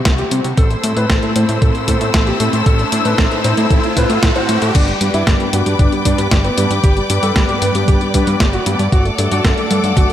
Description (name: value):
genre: italo disco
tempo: 115 BPM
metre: 4/4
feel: straight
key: G major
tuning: A4 = 440 Hz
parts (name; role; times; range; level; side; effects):
- dark grand piano; melody; 0.0-10.1 s; G3 to C5; -21 LUFS; equal; low-pass filter, tape echo
- rich studio string section; sustained chords; 0.0-10.1 s; A3 to E6; -21 LUFS; left 2 dB; none
- riser; sound effects; 0.3-4.7 s; none; -24 LUFS; right 2 dB; none
- fat analog bass; bass; 0.1-10.1 s; G1 to C3; -19 LUFS; equal; none
- clean 12-bit digital drum machine; drums; 0.1-10.1 s; crash cymbal, hi-hat, snare drum; -20 LUFS; equal; gated reverb
- electronic kick drum; drums; 0.1-10.1 s; none; -15 LUFS; equal; none
- mellow synth brass; stabs; 0.3-10.1 s; G2 to C5; -22 LUFS; left 1 dB; chorus
room: light reverb, digital ambience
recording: none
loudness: -12 LUFS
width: side -11 dB against mid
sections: 0.0-4.7 A section; 4.7-10.1 B section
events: filter sweep on analog polysynth 0.0-4.7; riser 0.3-4.7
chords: 0.0 C; 0.6 Am; 4.7 G; 8.9 D/G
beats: 0.05 | 0.57 1.10 1.62 2.14 | 2.66 3.18 3.71 4.23 | 4.75 5.27 5.79 6.32 | 6.84 7.36 7.88 8.40 | 8.92 9.45 9.97